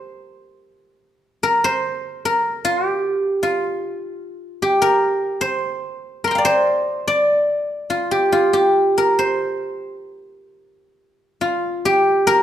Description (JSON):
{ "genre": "chinese traditional, Chinese solo plucked strings", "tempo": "65-78 BPM", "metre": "4/4", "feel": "rubato", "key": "C shang mode", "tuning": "A4 = 441 Hz", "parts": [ { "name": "guzheng", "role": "solo", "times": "0.0-12.4 s", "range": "F4 to C6", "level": "-17 LUFS", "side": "equal", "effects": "none" } ], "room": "moderate recital hall reverb, RT60 1.4 s", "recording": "minimal, uncompressed stereo recording", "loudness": "-17 LUFS", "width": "side -10 dB against mid", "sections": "0.0-11.0 A section; 11.0-12.4 B section", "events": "none", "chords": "none" }